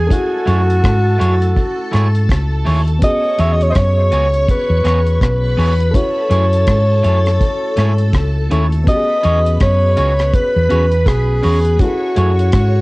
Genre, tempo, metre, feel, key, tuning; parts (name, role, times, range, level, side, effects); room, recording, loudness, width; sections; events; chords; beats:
lovers rock reggae; 82 BPM; 4/4; swing 59% on 16ths; E major; A4 = 440 Hz
breathy alto saxophone; melody; 0.0-12.8 s; F#4 to E5; -17 LUFS; equal; cassette tape, tape echo
string machine, full ensemble; second line; 0.0-12.8 s; A4 to C#6; -27 LUFS; equal; phaser, ensemble chorus
FM electric piano with tremolo; accompaniment; 0.0-12.8 s; G#3 to A4; -25 LUFS; left 2 dB
hollow-body short-scale fingered electric bass; bass; 0.0-12.8 s; B1 to G#2; -14 LUFS; equal
deep reggae drum kit; drums; 0.1-12.7 s; hi-hat, kick drum, rim click; -17 LUFS; equal; cassette tape
electric guitar at the edge of break-up; stabs; 0.5-12.3 s; A3 to C#5; -22 LUFS; right 1 dB
little or no reverb; home recording on cassette; -12 LUFS; side -22 dB against mid
0.0-12.8 A section
0.1 F#m9; 3.0 E69; 5.9 F#m9; 8.9 E69; 11.8 F#m9
| 0.10 0.83 1.56 2.29 | 3.02 3.75 4.48 5.21 | 5.94 6.67 7.41 8.14 | 8.87 9.60 10.33 11.07 | 11.80 12.53